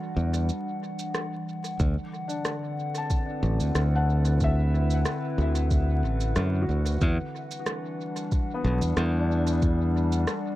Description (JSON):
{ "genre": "ambient dub", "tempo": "92 BPM", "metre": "4/4", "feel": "swing 53% on 16ths", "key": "unclear", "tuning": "A4 = 440 Hz", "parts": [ { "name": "warbly tape-like pad", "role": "sustained chords", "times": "0.0-10.6 s", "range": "D3 to F#5", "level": "-31 LUFS", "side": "left 1 dB", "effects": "chorus, built-in reverb" }, { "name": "felt-muted upright piano", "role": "arpeggios", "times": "0.0-10.6 s", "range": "B3 to A5", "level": "-36 LUFS", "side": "left 3 dB", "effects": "tape echo" }, { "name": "modern bright fingered electric bass", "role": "bass", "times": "0.2-10.2 s", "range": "A1 to F#2", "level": "-24 LUFS", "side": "equal", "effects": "none" }, { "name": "electronic shaker and rim click", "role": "drums", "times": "0.3-10.4 s", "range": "none", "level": "-34 LUFS", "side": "right 1 dB", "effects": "dub echo" }, { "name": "electronic kick drum", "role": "drums", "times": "1.8-9.8 s", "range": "none", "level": "-26 LUFS", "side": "equal", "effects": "none" } ], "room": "little or no reverb", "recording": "echo-heavy mix, vinyl crackle", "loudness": "-24 LUFS", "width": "side -16 dB against mid", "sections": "0.0-1.8 A section; 1.8-10.6 B section", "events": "break 0.5-1.8", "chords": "0.0 Em9; 1.8 D13; 7.0 Em9", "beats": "0.49 1.15 | 1.80 2.45 3.10 3.75 | 4.41 5.06 5.71 6.36 | 7.01 7.67 8.32 8.97 | 9.62 10.28" }